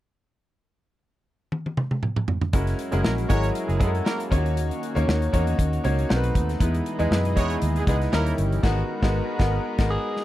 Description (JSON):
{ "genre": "polished 1980s jazz-funk pop", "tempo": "118 BPM", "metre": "4/4", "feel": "swing 54% on 16ths", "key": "unclear", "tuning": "A4 = 437 Hz", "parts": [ { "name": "modern studio drum kit", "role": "drums", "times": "1.5-10.2 s", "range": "crash cymbal, hi-hat, kick drum, snare drum, toms", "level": "-24 LUFS", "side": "equal", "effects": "none" }, { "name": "clear baby grand piano", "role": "accompaniment", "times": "2.5-10.2 s", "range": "G3 to C#5", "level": "-26 LUFS", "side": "left 1 dB", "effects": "wide subtle chorus" }, { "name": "lush unison pad", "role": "sustained chords", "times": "2.5-10.2 s", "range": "B2 to D#5", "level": "-33 LUFS", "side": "equal", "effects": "chorus" }, { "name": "vintage muted fingered electric bass", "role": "bass", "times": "2.5-10.0 s", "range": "F#1 to F#2", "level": "-24 LUFS", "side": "equal", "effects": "none" }, { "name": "clear horn section", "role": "second line", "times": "2.9-8.3 s", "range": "G#3 to C#5", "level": "-32 LUFS", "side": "right 4 dB", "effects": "none" }, { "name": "growling alto saxophone", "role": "melody", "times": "9.9-10.2 s", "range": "G#4", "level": "-28 LUFS", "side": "left 1 dB", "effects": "none" } ], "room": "little or no reverb", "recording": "dry, close 1970s-style studio recording", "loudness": "-21 LUFS", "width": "side -14 dB against mid", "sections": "0.5-2.5 A section; 2.5-10.2 B section", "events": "drum fill 1.5-2.5; band accent 8.6-10.2", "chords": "0.5 N.C.; 2.5 F#9; 4.3 D#m7; 6.1 B7b9; 6.6 Emaj7; 8.1 D#7b9; 8.6 G#m9", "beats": "| 0.50 1.01 1.52 2.03 | 2.54 3.05 3.56 4.06 | 4.57 5.08 5.59 6.10 | 6.61 7.11 7.62 8.13 | 8.64 9.15 9.65 10.16" }